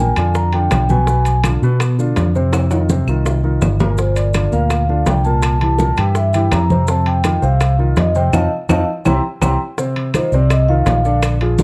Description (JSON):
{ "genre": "Afro-Cuban jazz", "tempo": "166 BPM", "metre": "4/4", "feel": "straight", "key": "F mixolydian", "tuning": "A4 = 442 Hz", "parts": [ { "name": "vibraphone with soft mallets", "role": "melody", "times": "0.0-1.4, 4.0-11.6 s", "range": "C5 to C6", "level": "-22 LUFS", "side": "equal", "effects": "none" }, { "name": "warm grand piano", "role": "accompaniment", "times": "0.0-11.6 s", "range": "Bb2 to D5", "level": "-23 LUFS", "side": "equal", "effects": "none" }, { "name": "fingered electric bass", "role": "bass", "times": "0.0-11.6 s", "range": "G1 to B2", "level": "-18 LUFS", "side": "equal", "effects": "none" }, { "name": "bongos", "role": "percussion", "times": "0.2-11.6 s", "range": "none", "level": "-29 LUFS", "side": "equal", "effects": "none" }, { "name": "claves", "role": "percussion", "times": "0.2-11.4 s", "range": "none", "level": "-33 LUFS", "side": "equal", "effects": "none" }, { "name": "maracas", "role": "percussion", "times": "0.2-11.6 s", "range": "none", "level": "-38 LUFS", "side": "equal", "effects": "none" }, { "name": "timbales", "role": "percussion", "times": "0.2-11.6 s", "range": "none", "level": "-28 LUFS", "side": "equal", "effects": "none" }, { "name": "congas", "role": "percussion", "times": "0.4-11.6 s", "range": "none", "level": "-24 LUFS", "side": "equal", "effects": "none" } ], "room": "light reverb", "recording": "dark, warm production", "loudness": "-16 LUFS", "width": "mono", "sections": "0.0-9.8 A section; 9.8-11.6 B section", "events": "drum fill 2.5-4.0; band accent 8.3-9.8; vibraphone solo 9.8-11.6", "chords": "0.0 Bb6; 1.1 Bdim7; 2.5 Fsus2; 4.0 Gm7; 5.4 C6; 6.9 F7sus2; 9.1 C7; 9.8 F5", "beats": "0.35 0.72 | 1.08 1.44 1.80 2.17 | 2.53 2.89 3.25 3.62 | 3.98 4.34 4.70 5.07 | 5.43 5.79 6.16 6.52 | 6.88 7.24 7.61 7.97 | 8.33 8.69 9.05 9.42 | 9.78 10.14 10.51 10.87 | 11.23 11.59" }